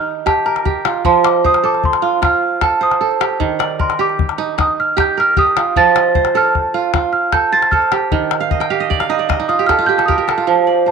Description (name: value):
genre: west african traditional, West African string and xylophone music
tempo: 102 BPM (dotted quarters)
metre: 12/8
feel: straight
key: unclear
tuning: A4 = 440 Hz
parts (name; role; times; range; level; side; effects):
- worn celesta; melody; 0.0-10.9 s; A5 to A6; -16 LUFS; equal; none
- kora; arpeggios; 0.0-10.9 s; Eb3 to G5; -15 LUFS; right 6 dB; none
- calabash; percussion; 0.3-10.4 s; none; -20 LUFS; left 7 dB; none
room: wet spring reverb, RT60 2.0 s, small room ambience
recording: 1960s-style stereo with parts hard left and right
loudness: -12 LUFS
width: side -6 dB against mid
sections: 0.0-10.5 A section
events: celesta solo 0.0-10.5; kora fill 8.4-10.5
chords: 0.0 Eb; 1.1 F; 3.4 Eb; 5.8 F; 8.1 Eb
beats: 0.46 | 1.05 1.64 2.23 2.82 | 3.41 4.00 4.58 5.17 | 5.76 6.35 6.94 7.53 | 8.12 8.71 9.29 9.88 | 10.48